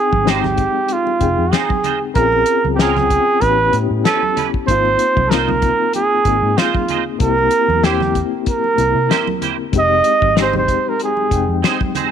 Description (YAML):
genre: lush 1970s-style soul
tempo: 95 BPM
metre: 4/4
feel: swing 54% on 16ths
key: F minor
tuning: A4 = 437 Hz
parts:
  - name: warm flugelhorn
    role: melody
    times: 0.0-11.6 s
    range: F4 to Eb5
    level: -16 LUFS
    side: right 4 dB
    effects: none
  - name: reed electric piano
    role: accompaniment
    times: 0.0-12.1 s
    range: Ab3 to G5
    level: -21 LUFS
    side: left 13 dB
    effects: fast tremolo
  - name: vintage muted fingered electric bass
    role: bass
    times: 0.1-11.6 s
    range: F1 to C3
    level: -21 LUFS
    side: equal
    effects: none
  - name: cloth-damped thuddy drum kit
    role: drums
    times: 0.1-12.1 s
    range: hi-hat, kick drum, snare drum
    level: -20 LUFS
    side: left 3 dB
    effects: none
  - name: congas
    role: percussion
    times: 0.1-12.1 s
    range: none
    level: -28 LUFS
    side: right 11 dB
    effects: none
  - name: clean electric guitar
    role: riff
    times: 0.3-12.1 s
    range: G3 to C5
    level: -23 LUFS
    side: right 16 dB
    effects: ensemble chorus
room: light reverb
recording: 1960s-style stereo with parts hard left and right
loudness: -13 LUFS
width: side -8 dB against mid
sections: 0.0-12.1 A section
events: none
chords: 0.0 Fm7; 2.2 Bbm7; 3.4 A9; 4.7 Ab6; 7.2 C7; 9.7 Fm7